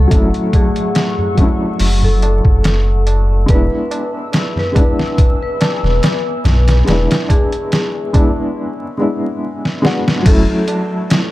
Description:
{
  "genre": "trip hop",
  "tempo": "71 BPM",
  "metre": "4/4",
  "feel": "swing 54% on 16ths",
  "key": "unclear",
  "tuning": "A4 = 435 Hz",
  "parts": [
    { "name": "vibraphone with medium mallets", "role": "melody", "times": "0.0-10.8 s", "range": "G#4 to B4", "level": "-23 LUFS", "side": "equal", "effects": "vintage 12-bit sampler grit, dub echo" },
    { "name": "dark upright piano", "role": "accompaniment", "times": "0.0-11.3 s", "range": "F#3 to F#4", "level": "-19 LUFS", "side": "equal", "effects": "tremolo, tape echo" },
    { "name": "deep dark ambient pad", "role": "sustained chords", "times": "0.0-11.3 s", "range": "A3 to E6", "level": "-25 LUFS", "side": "left 4 dB", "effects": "chorus, built-in reverb" },
    { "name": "warm sub bass", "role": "bass", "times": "0.0-10.5 s", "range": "E1 to B1", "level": "-13 LUFS", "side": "equal", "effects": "tube saturation" },
    { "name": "trip hop sampler-style drum kit", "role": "drums", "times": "0.1-11.3 s", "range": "crash cymbal, hi-hat, kick drum, snare drum", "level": "-14 LUFS", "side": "equal", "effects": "overdrive, small room ambience" },
    { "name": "tabla", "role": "percussion", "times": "0.1-11.3 s", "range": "none", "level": "-26 LUFS", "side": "right 1 dB", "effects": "none" }
  ],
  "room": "small room reverb",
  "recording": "dark, warm production, vinyl crackle",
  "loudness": "-12 LUFS",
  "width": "side -17 dB against mid",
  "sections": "0.0-10.3 A section; 10.3-11.3 B section",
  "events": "break 8.6-10.3; drum fill 9.6-10.3",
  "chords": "0.0 F#m7; 3.5 E7; 10.3 F#m7",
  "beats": "| 0.11 0.96 1.80 2.65 | 3.49 4.34 5.18 6.03 | 6.87 7.72 8.56 9.41 | 10.25 11.10"
}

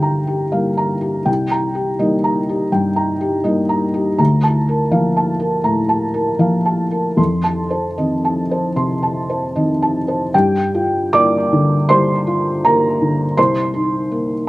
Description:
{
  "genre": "neoclassical minimalist piano",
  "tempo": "74-83 BPM",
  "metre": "4/4",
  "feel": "rubato",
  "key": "G minor",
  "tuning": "A4 = 440 Hz",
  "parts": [
    { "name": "felt-muted upright piano", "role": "solo", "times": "0.0-14.5 s", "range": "C2 to D6", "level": "-15 LUFS", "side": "equal", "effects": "none" }
  ],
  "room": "light reverb",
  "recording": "recorded outdoors, with no room sound",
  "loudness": "-15 LUFS",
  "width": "side -18 dB against mid",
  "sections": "0.0-10.3 A section; 10.3-14.5 B section",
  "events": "none",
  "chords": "0.0 Gm7; 1.3 Cm7; 4.2 Bbmaj7/D; 7.2 F7; 10.3 Gm7; 13.4 Cm7",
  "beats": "0.53 | 1.27 2.01 2.74 3.46 | 4.19 4.92 5.65 6.40 | 7.18 7.98 8.77 9.55 | 10.33 11.12 11.88 12.63 | 13.38 14.11"
}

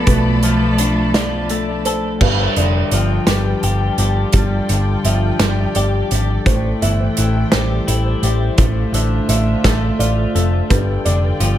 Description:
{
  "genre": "post-rock",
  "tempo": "56 BPM (dotted quarters)",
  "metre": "6/8",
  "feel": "straight",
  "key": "unclear",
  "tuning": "A4 = 440 Hz",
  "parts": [
    { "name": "dark cello", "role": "melody", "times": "0.0-1.9 s", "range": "A3 to B3", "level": "-21 LUFS", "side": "right 1 dB", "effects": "analog delay" },
    { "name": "dark studio string section", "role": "sustained chords", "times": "0.0-11.6 s", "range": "F3 to B5", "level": "-26 LUFS", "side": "left 1 dB", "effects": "none" },
    { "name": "felt-muted upright piano", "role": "arpeggios", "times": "0.0-11.6 s", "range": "B4 to E5", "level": "-27 LUFS", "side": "right 3 dB", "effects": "analog delay" },
    { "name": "twelve-string electric guitar", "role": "arpeggios", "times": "0.0-11.6 s", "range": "G2 to A4", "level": "-21 LUFS", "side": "left 2 dB", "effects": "wide subtle chorus, analog delay" },
    { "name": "hollow-body short-scale picked electric bass", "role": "bass", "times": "0.0-11.6 s", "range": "F1 to B1", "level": "-18 LUFS", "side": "equal", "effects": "none" },
    { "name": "loose indie drum kit", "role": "drums", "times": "0.1-11.6 s", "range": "crash cymbal, hi-hat, kick drum, snare drum", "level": "-18 LUFS", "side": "right 1 dB", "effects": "none" }
  ],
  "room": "light reverb, small room ambience",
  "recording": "none",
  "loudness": "-14 LUFS",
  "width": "side -12 dB against mid",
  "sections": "0.0-2.2 A section; 2.2-11.6 B section",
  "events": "none",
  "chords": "0.0 Bm7b5; 2.2 G7; 6.5 Am7; 8.6 Dm7/A; 10.7 G7",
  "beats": "| 0.07 1.14 | 2.21 3.27 | 4.34 5.40 | 6.46 7.53 | 8.59 9.65 | 10.71"
}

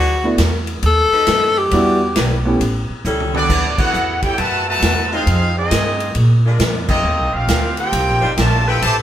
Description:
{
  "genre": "jazz, big band swing",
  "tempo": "135 BPM",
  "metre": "4/4",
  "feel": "swing 65% on 8ths",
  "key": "unclear",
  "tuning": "A4 = 440 Hz",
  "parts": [
    { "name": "bright tenor saxophone", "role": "melody", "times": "0.0-2.2 s", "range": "F#4 to A4", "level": "-16 LUFS", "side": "left 3 dB", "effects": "none" },
    { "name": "clear saxophone section", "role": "sustained chords", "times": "0.0-9.0 s", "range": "F#3 to C5", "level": "-24 LUFS", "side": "left 1 dB", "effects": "none" },
    { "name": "upright bass", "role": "bass", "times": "0.0-9.0 s", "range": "G1 to Bb2", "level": "-18 LUFS", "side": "equal", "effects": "none" },
    { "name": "warm concert grand piano", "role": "accompaniment", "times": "0.2-2.6 s", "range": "G3 to G4", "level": "-18 LUFS", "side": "right 1 dB", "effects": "none" },
    { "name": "swinging big-band drum kit", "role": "drums", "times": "0.4-9.0 s", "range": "crash cymbal, hi-hat, kick drum, ride cymbal, snare drum, toms", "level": "-22 LUFS", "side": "equal", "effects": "none" },
    { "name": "bright trumpet section", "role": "melody", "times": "3.3-9.0 s", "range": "B3 to A5", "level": "-19 LUFS", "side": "equal", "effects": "none" },
    { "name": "brilliant trombone section", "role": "second line", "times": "3.3-8.9 s", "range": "B2 to Ab4", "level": "-24 LUFS", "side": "right 2 dB", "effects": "none" }
  ],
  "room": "moderate stone room reverb, RT60 1.2 s",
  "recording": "band playing live in one room",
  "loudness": "-14 LUFS",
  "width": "side -11 dB against mid",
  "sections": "0.0-3.5 A section; 3.5-9.0 B section",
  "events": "tenor saxophone solo 0.0-3.5; drum fill 3.0-3.5; band accent 3.7, 6.8",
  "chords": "0.0 D69; 0.8 B7; 1.7 Em7; 2.6 A7; 3.5 D69; 5.3 Fm7; 6.2 Bb7; 7.0 Eb69",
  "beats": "0.38 0.82 1.27 | 1.71 2.16 2.60 3.05 | 3.49 3.94 4.38 4.83 | 5.27 5.72 6.16 6.61 | 7.05 7.49 7.94 8.38 | 8.83"
}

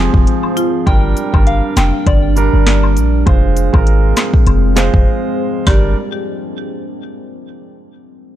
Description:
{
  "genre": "dancehall",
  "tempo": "100 BPM",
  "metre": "4/4",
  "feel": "swing 56% on 16ths",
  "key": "G phrygian",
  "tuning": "A4 = 439 Hz",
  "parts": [
    { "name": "dark grand piano", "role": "accompaniment", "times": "0.0-5.9 s", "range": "F3 to C5", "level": "-20 LUFS", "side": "right 6 dB", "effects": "none" },
    { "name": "deep dark ambient pad", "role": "sustained chords", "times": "0.0-5.9 s", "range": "F3 to D4", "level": "-21 LUFS", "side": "left 2 dB", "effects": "chorus, built-in reverb, sidechain pumping" },
    { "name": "warm 808-style bass", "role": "bass", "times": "0.0-5.9 s", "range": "F1 to Bb1", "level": "-13 LUFS", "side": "equal", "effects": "none" },
    { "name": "afro-pop drum kit", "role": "drums", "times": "0.1-5.8 s", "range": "handclaps, hi-hat, kick drum, snare drum", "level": "-13 LUFS", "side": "equal", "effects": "vintage 12-bit sampler grit" },
    { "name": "woodblock and cabasa", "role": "percussion", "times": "0.4-5.9 s", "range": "none", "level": "-26 LUFS", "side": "left 10 dB", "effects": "none" },
    { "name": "marimba with hard mallets", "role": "melody", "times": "0.6-0.7, 5.7-5.9 s", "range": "F4 to G4", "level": "-24 LUFS", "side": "equal", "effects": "ping-pong delay" },
    { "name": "soft synth bell", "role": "second line", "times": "0.9-5.9 s", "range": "D5 to G5", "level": "-24 LUFS", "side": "left 3 dB", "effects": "chorus, ping-pong delay" }
  ],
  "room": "little or no reverb",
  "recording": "dark, warm production",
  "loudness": "-10 LUFS",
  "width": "side -12 dB against mid",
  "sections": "0.0-5.7 A section; 5.7-8.1 B section",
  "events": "break 5.1-5.7",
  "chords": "0.0 Fm; 0.9 Gm; 3.3 Fm; 5.7 Gm",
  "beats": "0.27 | 0.87 1.47 2.07 2.67 | 3.27 3.87 4.47 5.07 | 5.67"
}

